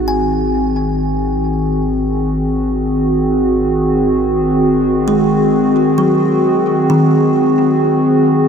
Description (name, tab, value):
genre	ambient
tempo	free time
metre	none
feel	none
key	unclear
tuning	A4 = 440 Hz
part	warbly tape-like pad	sustained chords	0.0-8.5 s	D#3 to G#4	-13 LUFS	equal	chorus, built-in reverb
part	kalimba	arpeggios	0.0-8.5 s	D#3 to G#5	-20 LUFS	right 1 dB	tape echo
part	deep rumbling drone	bass	0.0-6.9 s	G#1	-24 LUFS	equal	built-in reverb
room	wet huge ambient reverb, RT60 8.8 s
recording	none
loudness	-12 LUFS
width	side -7 dB against mid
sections	0.0-6.9 A section; 6.9-8.5 B section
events	filter sweep on ambient pad 0.0-6.9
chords	0.0 G#7